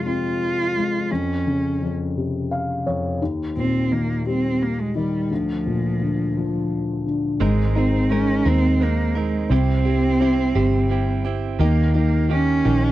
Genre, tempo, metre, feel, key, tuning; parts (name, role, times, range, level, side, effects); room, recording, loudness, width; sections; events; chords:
six-eight pop ballad; 57 BPM (dotted quarters); 6/8; straight; A4 = 440 Hz
dark cello; melody; 0.0-12.9 s; F3 to F4; -23 LUFS; right 2 dB
dark baby grand piano; accompaniment; 0.0-12.9 s; D2 to F5; -23 LUFS; left 3 dB
direct-recorded clean electric guitar; arpeggios; 7.4-12.9 s; C3 to Bb4; -28 LUFS; right 8 dB
vintage muted fingered electric bass; bass; 7.4-12.9 s; G1 to Eb2; -21 LUFS; equal
little or no reverb; dry, close 1970s-style studio recording; -19 LUFS; side -15 dB against mid
0.0-7.4 A section; 7.4-12.9 B section
grand piano fill 2.2-3.2
0.0 Fm; 1.1 Dbmaj7/F; 3.2 Eb; 5.3 Bb/D; 7.4 Abadd9; 9.5 C; 11.6 Eb